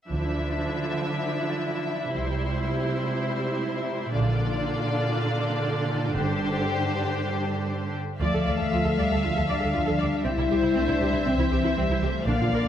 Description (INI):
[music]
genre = cinematic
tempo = 118 BPM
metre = 4/4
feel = straight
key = D minor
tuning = A4 = 440 Hz
[part]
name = warm symphonic violin section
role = second line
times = 0.1-12.7 s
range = E4 to F5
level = -30 LUFS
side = left 4 dB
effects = none
[part]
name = rich symphonic viola section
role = accompaniment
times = 0.1-12.7 s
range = D3 to D5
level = -29 LUFS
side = right 2 dB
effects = none
[part]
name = rich symphonic double bass section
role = bass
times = 0.1-12.7 s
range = G1 to D2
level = -29 LUFS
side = right 2 dB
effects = none
[part]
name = warm studio cello section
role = bass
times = 0.1-12.7 s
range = G2 to A3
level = -30 LUFS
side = right 2 dB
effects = none
[part]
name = mellow French horn section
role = sustained chords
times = 8.2-12.7 s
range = G3 to E4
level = -27 LUFS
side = left 4 dB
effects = none
[sound]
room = wet scoring stage reverb, RT60 1.6 s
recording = none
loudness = -23 LUFS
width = side -10 dB against mid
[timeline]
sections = 0.1-8.2 A section; 8.2-12.7 B section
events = none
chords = 0.1 Dmadd9; 2.1 C; 4.2 Bb; 6.2 Gsus4; 8.2 Dmadd9; 10.3 C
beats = | 0.10 0.61 1.12 1.63 | 2.13 2.64 3.15 3.65 | 4.15 4.65 5.16 5.66 | 6.16 6.66 7.17 7.68 | 8.20 8.71 9.23 9.74 | 10.25 10.76 11.27 11.77 | 12.28